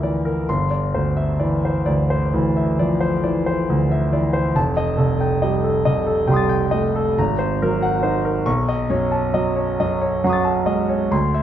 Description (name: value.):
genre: classical, impressionist solo piano.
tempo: 43-48 BPM (dotted quarters).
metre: 9/8.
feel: rubato.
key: unclear.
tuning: A4 = 436 Hz.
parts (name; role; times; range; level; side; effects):
clear concert grand piano; solo; 0.0-11.4 s; F1 to A6; -17 LUFS; equal; none.
room: moderate recital hall reverb, RT60 1.3 s.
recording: none.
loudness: -17 LUFS.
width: side -10 dB against mid.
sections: 0.0-11.4 A section.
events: none.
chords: 0.5 Cadd9/G; 4.6 F9; 7.2 Ab9; 8.5 B9.